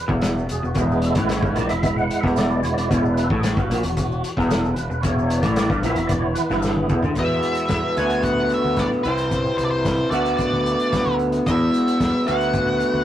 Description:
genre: psychedelic rock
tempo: 112 BPM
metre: 4/4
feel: straight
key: E mixolydian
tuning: A4 = 440 Hz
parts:
  - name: tonewheel organ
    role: sustained chords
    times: 0.0-7.1 s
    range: E3 to F#5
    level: -24 LUFS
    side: right 2 dB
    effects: slow rotary speaker, overdrive, chorus vibrato
  - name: tanpura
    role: drone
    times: 0.0-13.0 s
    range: E2 to E3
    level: -36 LUFS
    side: left 1 dB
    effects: none
  - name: electric guitar through a small old amp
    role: riff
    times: 0.1-13.0 s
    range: E2 to F#4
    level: -21 LUFS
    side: equal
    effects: rotary speaker
  - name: growling picked electric bass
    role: bass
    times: 0.1-13.0 s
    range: E1 to E2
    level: -27 LUFS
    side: equal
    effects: overdrive
  - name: vintage drum kit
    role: drums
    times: 0.1-12.9 s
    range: hi-hat, kick drum, snare drum, toms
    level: -25 LUFS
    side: equal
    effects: none
  - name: maracas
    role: percussion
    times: 0.2-13.0 s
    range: none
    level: -44 LUFS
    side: left 5 dB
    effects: none
  - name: octave-fuzz lead guitar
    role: melody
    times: 7.2-13.0 s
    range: C5 to G#5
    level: -26 LUFS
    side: equal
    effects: distortion
room: moderate booth ambience, RT60 0.2 s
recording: rough rehearsal-room recording, tube saturation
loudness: -18 LUFS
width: side -11 dB against mid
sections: 0.0-7.2 A section; 7.2-13.0 B section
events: tonewheel organ solo 0.0-7.2; drum fill 6.6-7.2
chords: 0.0 E; 8.0 D6; 9.1 C; 10.1 D6; 11.5 E; 12.3 D6

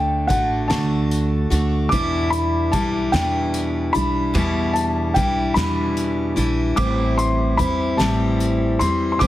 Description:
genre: acoustic folk duo or small band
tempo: 49 BPM (dotted quarters)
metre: 6/8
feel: straight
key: unclear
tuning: A4 = 440 Hz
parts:
  - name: felt-muted upright piano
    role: melody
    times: 0.0-9.3 s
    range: F#5 to D6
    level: -23 LUFS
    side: left 1 dB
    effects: none
  - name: picked steel-string acoustic guitar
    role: accompaniment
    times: 0.0-9.3 s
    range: E2 to F#4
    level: -22 LUFS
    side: left 1 dB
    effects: none
  - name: upright bass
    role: bass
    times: 0.0-9.3 s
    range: A1 to E2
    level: -23 LUFS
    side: right 1 dB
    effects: none
  - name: loose indie drum kit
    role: drums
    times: 0.3-9.3 s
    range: hi-hat, kick drum, snare drum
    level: -26 LUFS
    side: equal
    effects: none
room: light reverb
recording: heavily compressed radio sound, multiband compression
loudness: -18 LUFS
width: side -14 dB against mid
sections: 0.0-9.3 A section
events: none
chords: 0.0 D; 1.9 Em7; 6.8 Am7

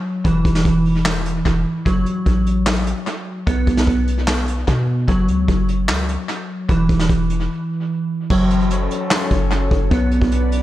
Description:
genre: hip hop, trap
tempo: 149 BPM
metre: 4/4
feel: half-time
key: F# minor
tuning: A4 = 440 Hz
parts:
  - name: glassy digital keys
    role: arpeggios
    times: 0.0-10.6 s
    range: E3 to B3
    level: -20 LUFS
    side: equal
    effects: chorus, low-pass filter, tape echo
  - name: warm 808-style bass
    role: bass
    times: 0.2-10.6 s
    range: E1 to B2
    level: -20 LUFS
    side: equal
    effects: none
  - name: vintage brush drum kit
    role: drums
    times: 0.2-10.6 s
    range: crash cymbal, handclaps, hi-hat, kick drum, snare drum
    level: -21 LUFS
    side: equal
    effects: vintage 12-bit sampler grit, tape echo
  - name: warbly tape-like pad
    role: sustained chords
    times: 8.7-10.6 s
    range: F#3 to D5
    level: -25 LUFS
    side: left 3 dB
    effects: chorus, built-in reverb
room: light reverb, studio ambience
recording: echo-heavy mix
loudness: -16 LUFS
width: side -14 dB against mid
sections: 0.0-8.3 A section; 8.3-10.6 B section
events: break 7.5-8.3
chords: 0.2 N.C.; 1.9 F#m; 3.5 N.C.; 5.1 F#5; 6.7 N.C.; 8.3 F#m; 9.9 Bm

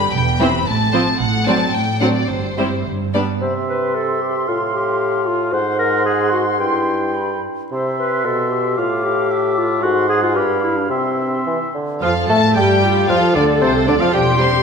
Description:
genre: quick classical-period movement for symphony orchestra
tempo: 106-117 BPM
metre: 2/4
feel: rubato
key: C major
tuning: A4 = 439 Hz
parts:
  - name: clear studio violin section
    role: melody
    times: 0.0-2.9, 12.0-14.6 s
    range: C5 to C6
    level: -21 LUFS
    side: left 4 dB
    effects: none
  - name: dark studio cello section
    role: bass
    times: 0.0-3.3, 12.0-14.6 s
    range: E2 to A4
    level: -22 LUFS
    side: right 3 dB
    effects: none
  - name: rich studio double bass section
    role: bass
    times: 0.0-3.3, 12.0-14.6 s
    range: E1 to A2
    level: -23 LUFS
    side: right 4 dB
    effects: none
  - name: rich studio violin section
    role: second line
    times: 0.4-3.3, 12.0-14.5 s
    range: C4 to D5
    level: -25 LUFS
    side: left 3 dB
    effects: none
  - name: warm studio viola section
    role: accompaniment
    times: 0.4-3.3, 12.0-14.5 s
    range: C3 to C4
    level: -21 LUFS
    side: right 1 dB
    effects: none
  - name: flute section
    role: second line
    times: 3.4-14.6 s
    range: C5 to D6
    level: -24 LUFS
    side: left 1 dB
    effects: none
  - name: mellow clarinet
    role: second line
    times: 3.4-14.5 s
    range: C4 to C5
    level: -21 LUFS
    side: left 2 dB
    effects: none
  - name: warm oboe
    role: second line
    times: 3.4-14.6 s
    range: C5 to A5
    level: -24 LUFS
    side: equal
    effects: none
  - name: warm bassoon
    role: accompaniment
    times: 3.4-14.6 s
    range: G2 to A3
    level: -21 LUFS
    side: right 2 dB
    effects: none
  - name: mellow French horn section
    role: sustained chords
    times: 12.0-14.6 s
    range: C3 to G4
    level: -21 LUFS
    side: left 4 dB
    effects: none
room: wet concert hall reverb, RT60 2.3 s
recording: none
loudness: -15 LUFS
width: side -6 dB against mid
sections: 0.0-3.4 A section; 3.4-12.0 B section; 12.0-14.6 A section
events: none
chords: 0.1 C/E; 0.7 F/A; 1.2 D7/A; 2.3 C/G; 2.9 G; 3.4 C; 4.5 F/A; 5.5 Ab7; 6.6 C/G; 7.7 C; 8.8 F/A; 9.8 Ab7; 10.4 G7; 10.9 C; 12.0 F; 13.1 F6

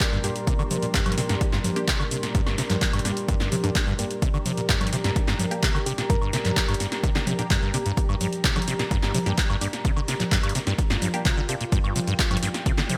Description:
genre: acid house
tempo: 128 BPM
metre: 4/4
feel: straight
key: G minor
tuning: A4 = 441 Hz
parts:
  - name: warm analog pad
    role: sustained chords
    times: 0.0-13.0 s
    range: Bb2 to Bb4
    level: -37 LUFS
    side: equal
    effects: chorus, sidechain pumping
  - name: electronic kick drum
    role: drums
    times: 0.0-12.8 s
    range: none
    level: -27 LUFS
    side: equal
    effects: overdrive
  - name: punchy analog drum machine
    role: drums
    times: 0.0-13.0 s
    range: cabasa, congas, handclaps, hi-hat, snare drum, woodblock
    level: -29 LUFS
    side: equal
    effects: gated reverb
  - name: warbly tape-like pad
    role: texture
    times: 0.0-13.0 s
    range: G4 to C6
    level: -37 LUFS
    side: equal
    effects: chorus, built-in reverb, sidechain pumping
  - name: acid bass, saw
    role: riff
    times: 0.1-13.0 s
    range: G2 to D3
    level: -31 LUFS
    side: equal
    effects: tube saturation, analog chorus, cassette tape, digital delay
  - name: filtered dub chord stab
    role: stabs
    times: 0.2-11.6 s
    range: Bb3 to G4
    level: -36 LUFS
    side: equal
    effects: phaser, digital delay
  - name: swell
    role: sound effects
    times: 2.8-3.3 s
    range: none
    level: -40 LUFS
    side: equal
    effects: none
  - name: soft struck synth lead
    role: melody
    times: 5.9-6.6 s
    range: G4 to Bb4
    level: -36 LUFS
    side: equal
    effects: chorus, cassette tape, delay
room: light reverb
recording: bright 1980s-style digital production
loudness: -24 LUFS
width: mono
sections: 0.0-13.0 A section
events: none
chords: 0.0 Gm

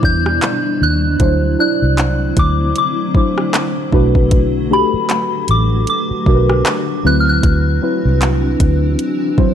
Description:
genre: contemporary R&B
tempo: 77 BPM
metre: 4/4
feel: swing 58% on 16ths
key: unclear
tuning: A4 = 441 Hz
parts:
  - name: soft synth bell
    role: melody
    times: 0.0-9.5 s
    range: B5 to G6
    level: -20 LUFS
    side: left 2 dB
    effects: chorus, phaser, digital delay
  - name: muted felt-like synth keys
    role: accompaniment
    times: 0.0-9.5 s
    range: B2 to D5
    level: -18 LUFS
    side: equal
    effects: chorus, phaser
  - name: granular cloud pad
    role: sustained chords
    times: 0.0-9.5 s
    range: B2 to F#4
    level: -22 LUFS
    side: left 1 dB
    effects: built-in reverb
  - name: vintage muted fingered electric bass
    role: bass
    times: 0.0-9.0 s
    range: A1 to E2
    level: -15 LUFS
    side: equal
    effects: none
  - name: smooth R&B drum kit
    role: drums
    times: 0.0-9.5 s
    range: handclaps, hi-hat, kick drum, rim click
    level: -16 LUFS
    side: equal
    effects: none
room: light reverb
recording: none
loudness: -12 LUFS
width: side -9 dB against mid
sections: 0.0-9.5 A section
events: none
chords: 0.0 Cmaj9; 1.2 D9; 3.9 Bm7; 7.0 D13

